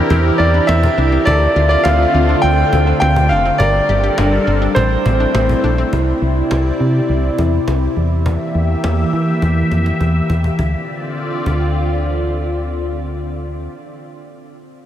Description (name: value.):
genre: synth-pop.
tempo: 103 BPM.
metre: 4/4.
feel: straight.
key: D minor.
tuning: A4 = 440 Hz.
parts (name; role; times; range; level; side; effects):
clear concert grand piano; melody; 0.0-5.6 s; C5 to G5; -17 LUFS; right 1 dB; analog delay.
phased analog pad; sustained chords; 0.0-13.7 s; C3 to E5; -19 LUFS; equal; phaser, chorus.
analog pluck; arpeggios; 0.0-5.9 s; C4 to Bb4; -24 LUFS; left 2 dB; chorus, analog delay.
solid FM bass; bass; 0.1-13.7 s; F1 to E3; -16 LUFS; equal; none.
cajon; drums; 0.1-11.6 s; none; -26 LUFS; equal; none.
room: wet huge ambient reverb, RT60 7.6 s.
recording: dreamy mix soaked in reverb.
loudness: -13 LUFS.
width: side -11 dB against mid.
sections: 0.0-5.9 A section; 5.9-10.6 B section; 10.6-12.9 C section.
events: drum fill 9.4-10.6.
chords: 0.0 Edim; 1.3 Dm7; 3.6 Gmadd9; 4.8 Am; 5.9 Cadd9; 8.0 Edim; 10.6 Dm7.